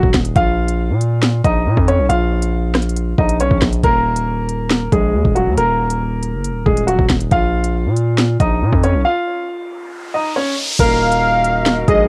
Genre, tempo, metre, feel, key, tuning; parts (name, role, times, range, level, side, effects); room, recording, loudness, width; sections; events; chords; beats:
hip hop, drill; 138 BPM; 4/4; half-time; Eb minor; A4 = 440 Hz
clear baby grand piano; melody; 0.0-12.1 s; Gb3 to F5; -21 LUFS; equal; cassette tape
distorted 808-style bass; bass; 0.0-12.1 s; Eb1 to Bb2; -20 LUFS; equal; distortion
drill drum kit; drums; 0.0-12.0 s; crash cymbal, hi-hat, kick drum, rim click, snare drum; -20 LUFS; equal; cassette tape
riser; sound effects; 9.8-10.8 s; -28 LUFS; equal
warm velvety synth lead; second line; 10.8-12.1 s; Eb5 to F5; -18 LUFS; equal; chorus, cassette tape, tape echo
flute section; sustained chords; 10.8-12.1 s; Eb4 to Eb5; -27 LUFS; equal; cassette tape
little or no reverb; home recording on cassette; -16 LUFS; mono
0.0-10.8 A section; 10.8-12.1 B section
break 9.1-10.8; riser 9.8-10.8
0.4 Bb5; 3.8 Eb5; 7.3 Bb5; 10.8 Ebm
| 0.36 0.79 1.23 1.66 | 2.10 2.53 2.97 3.40 | 3.84 4.27 4.71 5.14 | 5.58 6.01 6.45 6.88 | 7.31 7.75 8.18 8.62 | 9.05 9.49 9.92 10.36 | 10.79 11.23 11.66